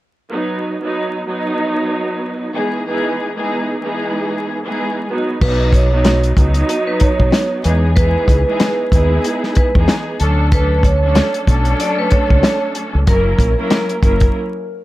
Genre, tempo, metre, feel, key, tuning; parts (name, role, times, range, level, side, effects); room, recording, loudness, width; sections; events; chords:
hip hop, boom-bap hip-hop; 94 BPM; 4/4; swing 59% on 16ths; B major; A4 = 440 Hz
warm symphonic string section; accompaniment; 0.3-14.4 s; E3 to A#4; -19 LUFS; right 1 dB; high-pass filter, low-pass filter, plate reverb
vibraphone with hard mallets; melody; 5.4-14.3 s; A#4 to D#5; -20 LUFS; right 2 dB; high-pass filter, low-pass filter, plate reverb, tape echo
deep dub fingered electric bass; bass; 5.4-14.3 s; F#1 to E2; -15 LUFS; equal
warm soul drum kit; drums; 5.4-14.3 s; crash cymbal, hi-hat, kick drum, snare drum; -15 LUFS; equal
light reverb; vinyl crackle; -13 LUFS; side -16 dB against mid
0.3-5.4 A section; 5.4-14.8 B section
break 14.4-14.8
0.3 B; 2.5 Emaj7; 5.1 B; 7.6 Emaj7; 10.2 Dmaj7; 13.1 F#7